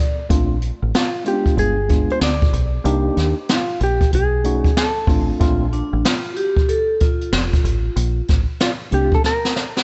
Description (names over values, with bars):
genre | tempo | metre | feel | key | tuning
hip hop, jazz-hop | 94 BPM | 4/4 | swing 65% on 16ths | Bb major | A4 = 441 Hz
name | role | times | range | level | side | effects
mellow tine electric piano | accompaniment | 0.0-9.2 s | Ab3 to D5 | -26 LUFS | equal | none
deep dub fingered electric bass | bass | 0.3-9.2 s | F1 to Eb2 | -22 LUFS | equal | none
jazz brush drum kit | drums | 0.3-9.8 s | hi-hat, kick drum, snare drum | -21 LUFS | equal | none
hollow-body jazz guitar | melody | 1.0-9.8 s | F4 to D5 | -25 LUFS | equal | analog delay
vibraphone with soft mallets | second line | 5.4-8.2 s | D4 to A4 | -25 LUFS | equal | none
room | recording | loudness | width
light reverb | nothing above 8.0 kHz | -18 LUFS | mono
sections
0.3-9.8 A section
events
break 0.0; drum fill 9.2-9.8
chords
0.3 Bbmaj9; 1.6 G7b9; 2.9 Cm9; 4.1 B9; 5.4 Bbmaj9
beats
| 0.30 0.94 1.58 2.21 | 2.85 3.49 4.13 4.77 | 5.41 6.04 6.68 7.32 | 7.96 8.60 9.23